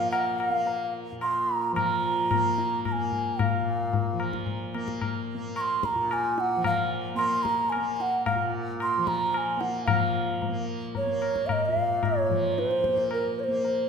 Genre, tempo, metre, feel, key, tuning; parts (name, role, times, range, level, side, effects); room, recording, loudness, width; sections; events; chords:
indian classical, Hindustani; 111 BPM; 3/4; straight; A4 = 440 Hz
mellow hollow bansuri; melody; 0.0-13.9 s; Bb4 to Db6; -26 LUFS; right 1 dB
tanpura; drone; 0.0-13.9 s; Bb2 to Bb3; -33 LUFS; equal
tabla; percussion; 0.1-13.8 s; -30 LUFS; left 5 dB
wet concert hall reverb, RT60 2.4 s; minimal, uncompressed stereo recording; -24 LUFS; side -6 dB against mid
0.0-9.9 A section; 9.9-13.9 B section